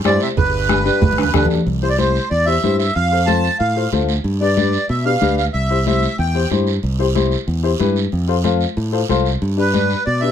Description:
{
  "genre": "latin, cumbia",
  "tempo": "186 BPM",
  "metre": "4/4",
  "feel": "straight",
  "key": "C major",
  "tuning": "A4 = 441 Hz",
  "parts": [
    { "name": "warm upright piano", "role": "accompaniment", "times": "0.0-10.3 s", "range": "D4 to C5", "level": "-20 LUFS", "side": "left 6 dB", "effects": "none" },
    { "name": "modern bright fingered electric bass", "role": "bass", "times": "0.0-10.3 s", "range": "G1 to B2", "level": "-19 LUFS", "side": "equal", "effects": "none" },
    { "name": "congas", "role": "percussion", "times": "0.0-10.2 s", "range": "none", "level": "-24 LUFS", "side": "left 3 dB", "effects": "none" },
    { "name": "guiro", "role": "percussion", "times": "0.0-10.3 s", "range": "none", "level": "-30 LUFS", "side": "right 9 dB", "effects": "none" },
    { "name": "accordion", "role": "melody", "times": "0.1-6.5, 9.6-10.3 s", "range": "B4 to A5", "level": "-19 LUFS", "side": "right 2 dB", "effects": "light tremolo tuning" },
    { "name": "brilliant trombone", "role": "second line", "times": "0.1-1.5 s", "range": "G2 to C3", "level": "-28 LUFS", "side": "right 8 dB", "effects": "none" },
    { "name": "bombo", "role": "percussion", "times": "0.1-1.5 s", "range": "none", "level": "-20 LUFS", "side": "right 3 dB", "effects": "none" },
    { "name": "cowbell and timbales", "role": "percussion", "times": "0.1-1.6 s", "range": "none", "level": "-27 LUFS", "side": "right 9 dB", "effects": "none" }
  ],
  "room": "light reverb",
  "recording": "close, detailed microphones",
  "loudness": "-15 LUFS",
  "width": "side -9 dB against mid",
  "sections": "0.0-1.7 A section; 1.7-10.3 B section",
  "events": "drum fill 1.0-1.7",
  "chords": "0.4 G; 1.7 C; 3.0 F; 4.2 G7; 5.5 C; 8.1 F; 9.4 G"
}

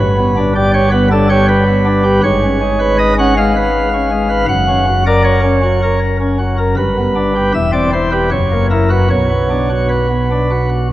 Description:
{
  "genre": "classical, chorale-style piece for pipe organ",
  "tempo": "78 BPM",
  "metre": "3/4",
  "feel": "uneven beats, rubato",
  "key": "unclear",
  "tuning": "A4 = 439 Hz",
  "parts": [
    { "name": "pipe organ, sparkling flutes", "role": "solo", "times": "0.0-10.9 s", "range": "E1 to F#5", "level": "-11 LUFS", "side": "equal", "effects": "none" }
  ],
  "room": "wet church reverb, RT60 3.1 s",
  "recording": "worn, warbling old tape, cassette tape, warbly pitch drift",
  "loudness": "-11 LUFS",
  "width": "side -15 dB against mid",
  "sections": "0.0-10.9 A section",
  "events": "none",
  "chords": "0.0 G; 2.2 C#7/G#; 4.5 F#; 6.8 G; 7.5 C/E; 8.3 F#7; 9.1 Bm"
}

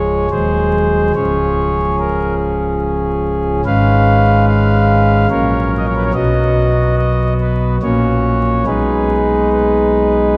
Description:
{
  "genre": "classical, chorale-style piece for pipe organ",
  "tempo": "72 BPM",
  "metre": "3/4",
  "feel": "rubato",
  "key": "Db major",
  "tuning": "A4 = 440 Hz",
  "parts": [
    { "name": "pipe organ, principal", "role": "solo", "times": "0.0-10.4 s", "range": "Db1 to E#5", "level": "-14 LUFS", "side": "equal", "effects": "none" }
  ],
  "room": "wet church reverb, RT60 3.8 s",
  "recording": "vinyl crackle, nothing above 10.8 kHz",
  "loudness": "-15 LUFS",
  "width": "mono",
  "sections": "0.0-10.4 A section",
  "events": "none",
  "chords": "0.3 Ab7/Eb; 1.1 Db; 3.6 C#7/G#; 5.3 F#/A#; 6.1 B; 7.8 F#/A#; 8.7 G#m/B"
}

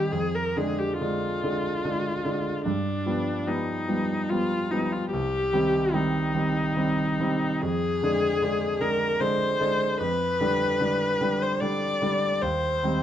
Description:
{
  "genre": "classical, romantic duo for viola and grand piano",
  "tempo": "67-77 BPM",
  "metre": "3/4",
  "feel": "rubato",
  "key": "C minor",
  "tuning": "A4 = 440 Hz",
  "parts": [
    { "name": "rich viola", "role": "melody", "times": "0.0-13.0 s", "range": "D4 to D5", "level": "-26 LUFS", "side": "left 2 dB", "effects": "none" },
    { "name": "clear grand piano", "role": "accompaniment", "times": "0.0-13.0 s", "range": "C2 to D4", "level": "-26 LUFS", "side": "right 1 dB", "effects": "none" }
  ],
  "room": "moderate large studio reverb, RT60 1.2 s",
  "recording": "dark, warm production",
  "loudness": "-23 LUFS",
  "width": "side -10 dB against mid",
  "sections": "0.0-13.0 A section",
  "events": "none",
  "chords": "0.1 Ddim/F; 2.6 G7; 5.1 Cm; 7.6 Ddim/F; 10.0 G7/F; 12.4 Cm/Eb"
}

